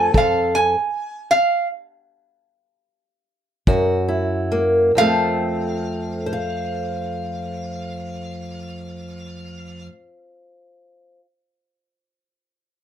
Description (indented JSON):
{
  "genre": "acoustic country blues, solo or duo",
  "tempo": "45-54 BPM (dotted quarters)",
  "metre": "12/8",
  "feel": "straight",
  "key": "unclear",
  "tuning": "A4 = 440 Hz",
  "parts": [
    { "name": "lap resonator guitar", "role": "melody", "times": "0.0-9.9 s", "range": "F5 to Ab5", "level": "-20 LUFS", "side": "right 3 dB", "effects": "none" },
    { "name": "fingerpicked old ladder-braced acoustic guitar", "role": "accompaniment", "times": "0.0-11.3 s", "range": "F2 to F5", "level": "-21 LUFS", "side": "left 1 dB", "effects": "none" },
    { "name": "kick drum", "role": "drums", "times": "0.1-3.9 s", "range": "none", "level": "-19 LUFS", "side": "equal", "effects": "none" }
  ],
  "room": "light reverb",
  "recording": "none",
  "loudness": "-18 LUFS",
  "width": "side -9 dB against mid",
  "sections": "0.0-5.0 A section; 5.0-10.2 B section",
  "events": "slowing down 0.0-5.0; stop 0.1-3.7",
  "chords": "0.0 F; 3.7 Gb7; 5.0 F",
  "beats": "| 0.15 1.28 2.45 3.67 | 4.96 6.28 7.60 8.92"
}